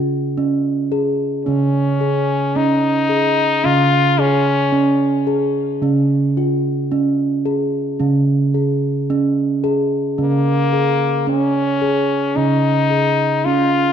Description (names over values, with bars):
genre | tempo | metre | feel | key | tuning
world meditative, meditative tuned percussion | 110 BPM | 4/4 | swing 55% on 16ths | Db major pentatonic | A4 = 443 Hz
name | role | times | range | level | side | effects
steel tongue drum | arpeggios | 0.0-13.9 s | Db3 to Ab4 | -16 LUFS | right 2 dB | none
stopped French horn | melody | 1.5-5.3, 10.2-13.9 s | Bb3 to F4 | -18 LUFS | left 4 dB | diffuse ambient delay
room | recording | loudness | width
wet echo chamber reverb, RT60 1.4 s, studio reverb | dark, warm production | -15 LUFS | side -8 dB against mid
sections
0.0-10.2 A section; 10.2-13.9 B section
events
none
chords
0.0 Db5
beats
0.38 0.93 | 1.47 2.02 2.56 3.10 | 3.65 4.19 4.74 5.28 | 5.83 6.37 6.92 7.46 | 8.00 8.55 9.09 9.64 | 10.18 10.73 11.28 11.82 | 12.37 12.91 13.46